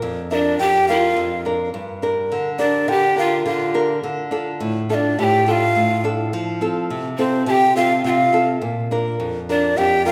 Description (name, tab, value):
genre	andean folk, Andean ensemble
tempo	104 BPM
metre	2/4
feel	straight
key	unclear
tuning	A4 = 437 Hz
part	nylon-string guitar	accompaniment	0.0-10.1 s	F2 to Bb4	-24 LUFS	equal	none
part	breathy bright large quena	melody	0.3-10.1 s	C5 to A5	-21 LUFS	equal	none
part	breathy bright pan flute	second line	0.3-10.1 s	C4 to G4	-24 LUFS	equal	none
room	wet recital hall reverb, RT60 1.7 s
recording	recorded in a church or concert hall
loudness	-19 LUFS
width	mono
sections	0.0-6.3 A section; 6.3-10.1 A section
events	none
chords	0.0 Bb; 1.7 Gm; 4.0 Dm; 6.3 F; 8.6 Bb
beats	0.02 | 0.59 1.17 | 1.74 2.31 | 2.89 3.46 | 4.03 4.61 | 5.18 5.76 | 6.33 6.90 | 7.48 8.05 | 8.63 9.20 | 9.78